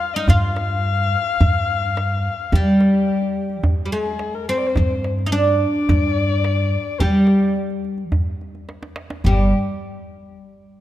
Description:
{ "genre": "Persian modal ensemble", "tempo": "107 BPM", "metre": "4/4", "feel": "straight", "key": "G dastgah shur", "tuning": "A4 = 438 Hz", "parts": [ { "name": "oud", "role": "melody", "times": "0.0-9.5 s", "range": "G3 to F4", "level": "-20 LUFS", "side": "right 1 dB", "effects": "none" }, { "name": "dark kamancheh", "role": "second line", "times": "0.0-9.5 s", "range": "G4 to F5", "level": "-25 LUFS", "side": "left 7 dB", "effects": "none" }, { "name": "tombak", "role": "percussion", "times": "0.1-9.5 s", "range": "none", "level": "-22 LUFS", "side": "right 1 dB", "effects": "none" }, { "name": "upright bass", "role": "bass", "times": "0.3-9.5 s", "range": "G1 to G3", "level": "-21 LUFS", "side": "equal", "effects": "none" } ], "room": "light reverb", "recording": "none", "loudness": "-17 LUFS", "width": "side -13 dB against mid", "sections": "0.0-9.3 A section; 9.3-10.8 B section", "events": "drum fill 8.7-9.3", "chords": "none" }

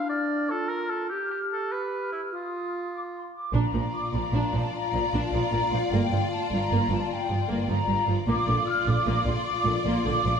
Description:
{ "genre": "cinematic, heroic adventure film score", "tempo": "101 BPM (dotted quarters)", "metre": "12/8", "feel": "straight", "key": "F major, Bb major from 3.5 s", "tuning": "A4 = 440 Hz", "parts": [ { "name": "dark clarinet", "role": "second line", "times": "0.0-3.3 s", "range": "D4 to G4", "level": "-31 LUFS", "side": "equal", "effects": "none" }, { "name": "large flute ensemble", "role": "second line", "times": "0.0-10.4 s", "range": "F5 to F6", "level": "-30 LUFS", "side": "left 1 dB", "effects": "none" }, { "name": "warm oboe", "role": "second line", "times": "0.0-3.3 s", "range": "E4 to D5", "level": "-32 LUFS", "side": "right 1 dB", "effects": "none" }, { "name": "warm symphonic violin section", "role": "second line", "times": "3.5-10.4 s", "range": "F4", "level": "-32 LUFS", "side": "left 5 dB", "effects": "none" }, { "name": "rich symphonic viola section", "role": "accompaniment", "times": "3.5-10.3 s", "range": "D3 to D4", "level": "-32 LUFS", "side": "right 1 dB", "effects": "none" }, { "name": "rich symphonic double bass section", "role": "bass", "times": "3.5-10.3 s", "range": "G1 to Bb1", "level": "-30 LUFS", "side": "right 2 dB", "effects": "none" }, { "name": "warm symphonic cello section", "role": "bass", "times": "3.5-10.3 s", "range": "G2 to Bb2", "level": "-29 LUFS", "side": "right 2 dB", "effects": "none" }, { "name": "rich symphonic violin section", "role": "melody", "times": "3.6-10.4 s", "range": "D5", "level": "-35 LUFS", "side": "left 6 dB", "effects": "none" } ], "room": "moderate scoring stage reverb, RT60 1.7 s", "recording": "none", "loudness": "-24 LUFS", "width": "side -7 dB against mid", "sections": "0.0-3.5 A section; 3.5-10.4 B section", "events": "none", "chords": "0.0 Dm; 1.1 G7; 2.3 F5; 3.5 Bb; 5.9 Gm7; 8.3 Bb" }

